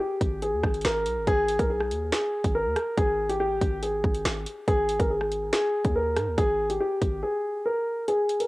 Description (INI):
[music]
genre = hip hop, drill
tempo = 141 BPM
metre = 4/4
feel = half-time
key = G# harmonic minor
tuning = A4 = 439 Hz
[part]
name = dark upright piano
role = melody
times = 0.0-8.5 s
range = G4 to A#4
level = -25 LUFS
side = equal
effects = low-pass filter, cassette tape, tape echo
[part]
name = hard-hitting 808-style bass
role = bass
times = 0.2-7.2 s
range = G#1 to G#2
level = -32 LUFS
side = equal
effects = none
[part]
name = drill drum kit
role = drums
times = 0.2-8.5 s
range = finger snaps, hi-hat, kick drum, rim click, snare drum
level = -27 LUFS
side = equal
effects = none
[sound]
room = digital ambience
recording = home recording on cassette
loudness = -23 LUFS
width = side -20 dB against mid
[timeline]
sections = 0.0-8.1 A section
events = break 7.2-8.1; kick muted 8.1-8.5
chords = 0.0 N.C.; 4.7 G#sus2